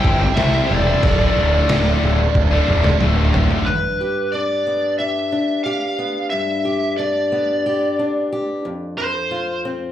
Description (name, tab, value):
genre	quiet-loud alternative rock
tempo	91 BPM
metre	4/4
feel	straight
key	unclear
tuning	A4 = 441 Hz
part	lead guitar through a small cranked amp	melody	0.0-9.6 s	B4 to G5	-21 LUFS	left 1 dB	overdrive, plate reverb, slapback echo
part	high-gain distorted guitar	riff	0.0-3.7 s	D2 to C5	-22 LUFS	left 7 dB	distortion
part	thick fuzz guitar	riff	0.0-3.7 s	D2 to C5	-24 LUFS	right 10 dB	distortion
part	fuzz picked electric bass	bass	0.0-3.5 s	D1 to C2	-18 LUFS	equal	overdrive
part	trip hop sampler-style drum kit	drums	0.0-3.7 s	crash cymbal, kick drum, snare drum, toms	-20 LUFS	right 1 dB	none
part	fingerpicked old ladder-braced acoustic guitar	arpeggios	3.7-9.9 s	F2 to G4	-23 LUFS	left 1 dB	plate reverb, slapback echo
room	moderate club reverb, RT60 0.7 s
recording	live gig heard through the venue's PA, club reverb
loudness	-16 LUFS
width	side -11 dB against mid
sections	0.0-3.7 A section; 3.7-9.9 B section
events	drum fill 2.4-3.7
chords	0.0 C; 1.0 Dm; 3.7 G; 8.6 F5